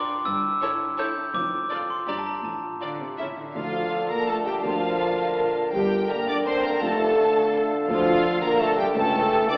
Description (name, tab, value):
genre	cinematic, playful, whimsical film cue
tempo	166 BPM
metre	3/4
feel	straight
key	D minor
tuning	A4 = 441 Hz
part	glockenspiel with hard plastic mallets	melody	0.0-3.3 s	A5 to G6	-27 LUFS	equal	none
part	concert harp	arpeggios	0.0-9.6 s	F2 to E5	-35 LUFS	equal	none
part	warm studio cello section	bass	0.2-9.2 s	C#2 to D3	-37 LUFS	equal	none
part	rich studio double bass section	bass	0.3-9.3 s	F1 to D2	-43 LUFS	equal	none
part	rich symphonic violin section	melody	0.6-9.6 s	G4 to E5	-35 LUFS	equal	none
part	rich studio violin section	second line	0.6-9.6 s	E4 to D6	-30 LUFS	equal	none
part	rich symphonic viola section	accompaniment	0.6-9.6 s	C#4 to D5	-29 LUFS	equal	none
part	mellow clarinet	second line	3.5-9.6 s	A4 to Bb4	-29 LUFS	equal	none
part	mellow bassoon	accompaniment	3.5-9.6 s	D3 to E3	-30 LUFS	equal	none
part	mellow silver concert flute	second line	3.6-9.6 s	F5 to A5	-31 LUFS	equal	none
part	mellow French horn section	sustained chords	3.6-9.6 s	F3 to D4	-26 LUFS	equal	none
part	mellow tuba	bass	3.6-9.2 s	F1 to D2	-33 LUFS	equal	none
room	wet scoring stage reverb, RT60 1.8 s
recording	heard from further back in the room, AM radio sound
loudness	-21 LUFS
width	side -36 dB against mid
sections	0.0-3.6 A section; 3.6-9.6 B section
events	none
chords	0.3 A7/G; 1.3 Dm/F; 2.1 Gm; 2.4 Dm/A; 3.2 A; 3.6 Dm; 4.6 Bbmaj7/D; 5.7 Gm; 6.8 Dm/F; 7.9 Dm; 9.0 A7/C#